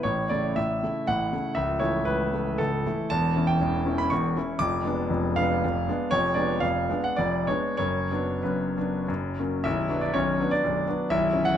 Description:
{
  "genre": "classical, romantic triple-time dance for piano with dotted rhythms",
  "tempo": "88-133 BPM",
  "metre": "3/4",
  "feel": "rubato",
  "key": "A major, B minor from 3.1 s",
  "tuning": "A4 = 440 Hz",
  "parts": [
    { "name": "clear concert grand piano", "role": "solo", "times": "0.0-11.6 s", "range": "B0 to D6", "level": "-23 LUFS", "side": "equal", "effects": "none" }
  ],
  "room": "moderate recital hall reverb, RT60 1.6 s",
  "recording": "close, detailed microphones",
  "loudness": "-23 LUFS",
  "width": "side -9 dB against mid",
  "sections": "0.0-9.7 A section; 9.7-11.6 B section",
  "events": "none",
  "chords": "0.0 A; 1.6 A/C#; 3.1 C#dim/E; 4.6 Fdim7; 7.8 Bm/F#; 9.1 F#; 9.7 Bm",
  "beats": "| 0.05 0.57 1.09 | 1.56 2.07 2.60 | 3.11 3.61 4.11 | 4.61 5.11 5.63 | 6.12 6.62 7.19 | 7.80 8.45 9.09 | 9.66 10.15 10.64 | 11.10 11.57"
}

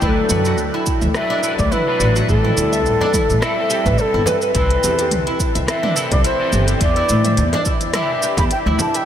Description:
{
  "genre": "organic downtempo",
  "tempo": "106 BPM",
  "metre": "4/4",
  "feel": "swing 54% on 16ths",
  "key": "E minor",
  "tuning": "A4 = 440 Hz",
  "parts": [
    { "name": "bansuri", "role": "melody", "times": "0.0-9.1 s", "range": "A4 to B5", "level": "-20 LUFS", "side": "left 1 dB", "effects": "tape echo" },
    { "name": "electric guitar at the edge of break-up", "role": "accompaniment", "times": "0.0-9.1 s", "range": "E3 to B4", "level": "-24 LUFS", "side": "left 1 dB", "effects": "ensemble chorus, sidechain pumping, tape echo" },
    { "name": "oud", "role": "arpeggios", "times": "0.0-9.0 s", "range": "D4 to E5", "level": "-23 LUFS", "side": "right 2 dB", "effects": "tape echo" },
    { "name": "upright bass", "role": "bass", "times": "0.0-8.8 s", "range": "G1 to A2", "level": "-20 LUFS", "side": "equal", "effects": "none" },
    { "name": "electronic kick drum", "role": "drums", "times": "0.0-8.5 s", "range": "none", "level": "-20 LUFS", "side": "equal", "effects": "studio reverb" },
    { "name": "organic electronic drum kit", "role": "drums", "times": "0.0-9.1 s", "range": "hi-hat, rim click, shaker, toms", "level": "-24 LUFS", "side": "right 1 dB", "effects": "studio reverb" },
    { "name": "frame drum", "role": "percussion", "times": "1.6-8.9 s", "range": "none", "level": "-29 LUFS", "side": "left 2 dB", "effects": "none" }
  ],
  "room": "moderate huge ambient reverb, RT60 8.6 s",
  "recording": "dreamy mix soaked in reverb",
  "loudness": "-15 LUFS",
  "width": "side -10 dB against mid",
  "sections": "0.0-9.1 A section",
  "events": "none",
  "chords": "0.0 D6; 2.3 Am7; 4.5 C6; 6.8 Em7",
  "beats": "| 0.02 0.59 1.15 1.72 | 2.29 2.85 3.42 3.98 | 4.55 5.12 5.68 6.25 | 6.81 7.38 7.95 8.51"
}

